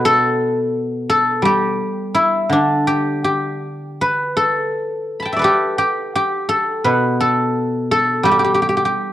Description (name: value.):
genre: chinese traditional, Chinese solo plucked strings.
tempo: 79-88 BPM.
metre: 4/4.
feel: rubato.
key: G gong mode.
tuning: A4 = 439 Hz.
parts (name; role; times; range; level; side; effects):
guzheng; solo; 0.0-9.1 s; B2 to B5; -15 LUFS; equal; none.
room: moderate spring reverb, RT60 1.4 s, studio ambience.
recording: home recording on cassette.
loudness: -15 LUFS.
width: side -12 dB against mid.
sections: 0.0-9.1 A section.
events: none.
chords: none.